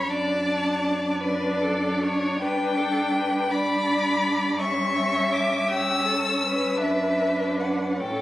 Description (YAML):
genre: classical, slow romantic movement for string quartet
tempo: 49-56 BPM (dotted quarters)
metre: 6/8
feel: rubato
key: D major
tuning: A4 = 440 Hz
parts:
  - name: warm violin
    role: melody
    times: 0.0-8.2 s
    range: D5 to E6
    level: -26 LUFS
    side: left 2 dB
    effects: none
  - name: rich violin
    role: second line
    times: 0.0-8.2 s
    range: G4 to E5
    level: -28 LUFS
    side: left 1 dB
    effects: none
  - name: dark viola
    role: accompaniment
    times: 0.0-8.2 s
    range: C#4 to D4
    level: -27 LUFS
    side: right 1 dB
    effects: none
  - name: warm cello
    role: bass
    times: 0.0-8.2 s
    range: F#2 to A2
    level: -30 LUFS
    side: right 1 dB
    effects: none
room: moderate scoring stage reverb, RT60 1.7 s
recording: recorded on a phone in the room, club reverb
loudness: -21 LUFS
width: side -15 dB against mid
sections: 0.0-8.2 A section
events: none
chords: 0.1 D/F#; 2.4 G; 4.6 A7/G (rootless); 6.8 D/F#